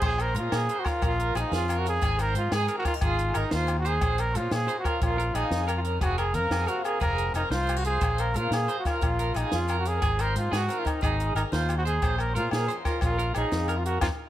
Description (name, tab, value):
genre	highlife guitar band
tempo	120 BPM (dotted quarters)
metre	12/8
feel	straight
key	Bb minor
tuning	A4 = 440 Hz
part	breathy trumpet	melody	0.0-14.1 s	Eb4 to Bb4	-29 LUFS	right 1 dB	tape echo
part	picked swing-style acoustic guitar	accompaniment	0.0-14.1 s	F2 to Ab4	-38 LUFS	left 7 dB	none
part	electric guitar at the edge of break-up	arpeggios	0.0-14.1 s	F4 to C5	-32 LUFS	right 3 dB	tremolo, tape echo
part	fingered electric bass	bass	0.0-14.1 s	F1 to Bb2	-28 LUFS	equal	none
part	compact cocktail drum kit	drums	0.0-14.1 s	crash cymbal, hi-hat, kick drum, snare drum	-31 LUFS	equal	none
part	agogo bells	percussion	0.0-14.1 s	none	-36 LUFS	left 6 dB	none
room	light reverb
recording	none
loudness	-24 LUFS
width	side -13 dB against mid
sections	0.0-14.3 A section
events	band accent 14.0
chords	0.0 Bbm; 2.0 Ab; 4.0 Bbm; 6.0 Fsus4; 8.0 Bbm; 10.0 Ab; 12.0 Bbm